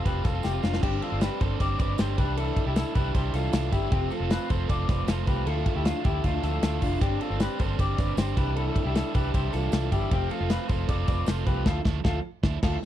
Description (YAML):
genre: jangly indie pop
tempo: 155 BPM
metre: 4/4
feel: straight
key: G mixolydian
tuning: A4 = 440 Hz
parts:
  - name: biting overdriven guitar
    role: accompaniment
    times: 0.0-12.8 s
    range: G2 to F4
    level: -33 LUFS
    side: right 10 dB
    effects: none
  - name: electric guitar through a small old amp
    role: arpeggios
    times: 0.0-12.8 s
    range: C4 to D5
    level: -31 LUFS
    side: left 5 dB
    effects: harmonic tremolo, slapback echo
  - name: vintage muted fingered electric bass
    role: bass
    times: 0.0-12.8 s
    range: F1 to D2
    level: -29 LUFS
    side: equal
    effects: none
  - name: modern studio drum kit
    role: drums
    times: 0.1-12.9 s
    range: crash cymbal, hi-hat, kick drum, ride cymbal, snare drum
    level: -27 LUFS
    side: equal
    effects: none
  - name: tambourine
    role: percussion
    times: 0.1-11.6 s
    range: none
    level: -53 LUFS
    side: left 8 dB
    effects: none
room: little or no reverb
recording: dry, close 1970s-style studio recording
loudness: -24 LUFS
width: side -12 dB against mid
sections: 0.8-12.9 A section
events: drum fill 0.4-0.8; band accent 11.7-12.9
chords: 0.0 Fsus2; 0.8 Gsus4; 2.2 Cadd9; 3.9 F; 5.5 Dmadd9; 7.0 Gsus4; 8.4 Cadd9; 10.1 F; 11.7 Dmadd9